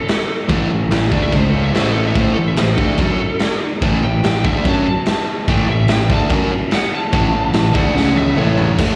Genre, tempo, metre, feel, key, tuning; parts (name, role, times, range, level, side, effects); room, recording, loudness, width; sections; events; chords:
garage rock duo or trio; 145 BPM; 4/4; straight; A major; A4 = 443 Hz
fuzz lead guitar; melody; 0.0-8.8 s; A4 to A5; -26 LUFS; equal; distortion, slapback echo, tape echo
raw garage drum kit; drums; 0.1-8.9 s; crash cymbal, kick drum, snare drum, toms; -21 LUFS; equal
fuzz guitar; riff; 0.5-9.0 s; A2 to F#4; -20 LUFS; equal; distortion, slapback echo
fuzz picked electric bass; bass; 0.5-8.9 s; A1 to F#2; -24 LUFS; equal; overdrive
light reverb, small room reverb; live gig heard through the venue's PA, recital hall reverb; -16 LUFS; mono
0.0-8.8 A section
lead electric guitar solo 0.0-8.8; drum fill 8.0-8.8
0.0 A5; 1.3 C#5; 1.7 A5; 8.0 C#5; 8.4 A5